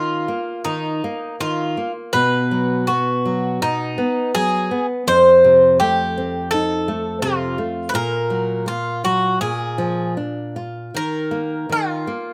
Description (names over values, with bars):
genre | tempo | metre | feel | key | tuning
fado-style ballad | 81 BPM | 4/4 | rubato | unclear | A4 = 440 Hz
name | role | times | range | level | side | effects
Greek bouzouki | melody | 0.0-12.3 s | Eb4 to C5 | -20 LUFS | equal | none
nylon-string guitar | accompaniment | 0.0-12.3 s | F2 to F4 | -25 LUFS | equal | none
room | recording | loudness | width
little or no reverb | recorded outdoors, with no room sound | -19 LUFS | mono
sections
0.0-12.3 A section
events
none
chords
0.0 Ebsus2; 2.1 B; 5.1 F; 7.9 Gbmaj7/Bb; 9.4 Bb7; 10.9 Ebsus2